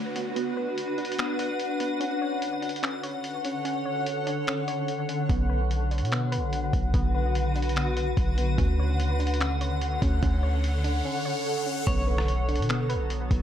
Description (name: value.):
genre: hip hop, atmospheric cloud-rap.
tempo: 146 BPM.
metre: 4/4.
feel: half-time.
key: unclear.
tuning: A4 = 439 Hz.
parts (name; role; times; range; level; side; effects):
granular cloud pad; sustained chords; 0.0-13.4 s; D3 to F#5; -29 LUFS; left 1 dB; built-in reverb, sidechain pumping.
soft round pluck; arpeggios; 0.0-13.4 s; B3 to C#5; -35 LUFS; right 1 dB; chorus, low-pass filter, tape echo.
downlifter, riser and impact; sound effects; 0.0-2.0, 9.8-13.4 s; none; -40 LUFS; left 1 dB; none.
lo-fi sampler-style drum kit; drums; 0.2-13.4 s; finger snaps, hi-hat, kick drum, rim click; -31 LUFS; equal; none.
warm 808-style bass; bass; 5.3-13.4 s; B1 to B2; -26 LUFS; equal; none.
electric guitar at the edge of break-up; melody; 11.9-12.7 s; C#5; -35 LUFS; equal; tremolo, low-pass filter, tape echo.
room: moderate plate reverb, RT60 1.1 s.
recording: dreamy mix soaked in reverb.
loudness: -24 LUFS.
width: side -10 dB against mid.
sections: 0.0-11.9 A section; 11.9-13.4 B section.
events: break 0.0-5.3, 11.0-11.9; riser 9.8-11.9; impact 11.9-13.4.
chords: 0.0 Bm; 2.0 Dmaj7; 5.3 Bm; 8.6 Dmaj7; 11.9 Bm.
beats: | 0.36 0.77 1.19 1.60 | 2.01 2.42 2.83 3.24 | 3.65 4.06 4.47 4.88 | 5.29 5.71 6.12 6.53 | 6.94 7.35 7.76 8.17 | 8.58 8.99 9.40 9.82 | 10.23 10.64 11.05 11.46 | 11.87 12.28 12.69 13.10.